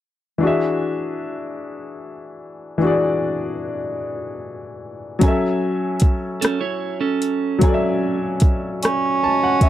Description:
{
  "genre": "slow six-eight R&B",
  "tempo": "50 BPM (dotted quarters)",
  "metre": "6/8",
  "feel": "straight",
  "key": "unclear",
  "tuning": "A4 = 440 Hz",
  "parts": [
    { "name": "clear grand piano", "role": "accompaniment", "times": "0.4-9.7 s", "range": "E3 to A5", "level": "-21 LUFS", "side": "left 2 dB", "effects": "none" },
    { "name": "smooth R&B drum kit", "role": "drums", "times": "5.2-9.7 s", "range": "hi-hat, kick drum, rim click", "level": "-16 LUFS", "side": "equal", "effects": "none" },
    { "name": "clean electric guitar", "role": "second line", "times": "6.4-8.2 s", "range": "C#4 to C#5", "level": "-22 LUFS", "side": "right 6 dB", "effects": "none" },
    { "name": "mellow tenor saxophone", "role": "melody", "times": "8.8-9.7 s", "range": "C#4", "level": "-17 LUFS", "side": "right 4 dB", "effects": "none" }
  ],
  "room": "small room ambience",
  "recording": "dry, close 1970s-style studio recording",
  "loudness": "-18 LUFS",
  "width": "side -12 dB against mid",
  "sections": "0.4-9.7 A section",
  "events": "grand piano fill 8.8-9.7",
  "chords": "0.4 E7; 5.2 F#m9"
}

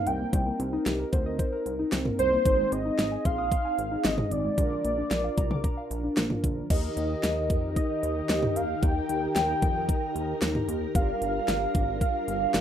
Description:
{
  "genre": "synth-pop",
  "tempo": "113 BPM",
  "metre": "4/4",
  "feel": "straight",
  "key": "unclear",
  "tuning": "A4 = 440 Hz",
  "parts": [
    { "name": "warm velvety synth lead", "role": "melody", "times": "0.0-12.6 s", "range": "C5 to G5", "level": "-28 LUFS", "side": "right 1 dB", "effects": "chorus, tape echo, plate reverb" },
    { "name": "mellow synth brass", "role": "accompaniment", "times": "0.0-12.6 s", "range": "C4 to Bb4", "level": "-34 LUFS", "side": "equal", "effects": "chorus, plate reverb" },
    { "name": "warbly dusty pluck", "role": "arpeggios", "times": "0.0-6.7 s", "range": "D3 to Eb6", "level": "-32 LUFS", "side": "left 2 dB", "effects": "chorus, tape echo, plate reverb" },
    { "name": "chorused synth bass", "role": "bass", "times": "0.1-12.6 s", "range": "G1 to F2", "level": "-33 LUFS", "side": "equal", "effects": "none" },
    { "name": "pop drum kit", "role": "drums", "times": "0.1-12.6 s", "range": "crash cymbal, hi-hat, kick drum, snare drum, toms", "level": "-28 LUFS", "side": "equal", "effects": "none" },
    { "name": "ensemble organ-string", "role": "sustained chords", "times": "6.7-12.6 s", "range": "Eb3 to Bb4", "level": "-33 LUFS", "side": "equal", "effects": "ensemble chorus, plate reverb" }
  ],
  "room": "wet studio ambience, RT60 0.5 s",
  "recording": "rough home demo mix",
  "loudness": "-24 LUFS",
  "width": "side -9 dB against mid",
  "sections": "0.0-6.7 A section; 6.7-12.6 B section",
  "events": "none",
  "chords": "0.0 Cm7; 2.5 Ab; 4.6 Bb; 6.7 Eb; 10.9 Gm7"
}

